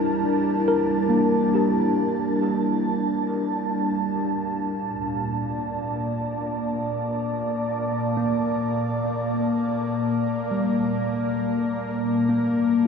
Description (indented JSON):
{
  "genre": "ambient",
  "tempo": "52 BPM",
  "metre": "4/4",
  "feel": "straight",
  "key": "unclear",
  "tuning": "A4 = 440 Hz",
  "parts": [
    { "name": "airy breathy pad", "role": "sustained chords", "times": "0.0-12.9 s", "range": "Bb2 to A5", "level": "-23 LUFS", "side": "equal", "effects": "chorus" },
    { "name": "tine electric piano", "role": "arpeggios", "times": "0.0-12.9 s", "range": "G3 to Bb4", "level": "-26 LUFS", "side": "equal", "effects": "dub echo" },
    { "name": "organ-like drone", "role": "drone", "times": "2.2-12.9 s", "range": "Bb3", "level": "-39 LUFS", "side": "right 3 dB", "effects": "ensemble chorus, built-in reverb" }
  ],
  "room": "wet plate reverb, RT60 3.4 s",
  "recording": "echo-heavy mix",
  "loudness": "-22 LUFS",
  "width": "side -6 dB against mid",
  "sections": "0.0-12.9 A section",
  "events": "fade-in on synth drone 0.0-12.9",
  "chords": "0.0 Gmadd9; 4.7 Bbmaj7",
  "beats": "| 0.10 1.26 2.41 3.56 | 4.71 5.87 7.04 8.21 | 9.38 10.55 11.73"
}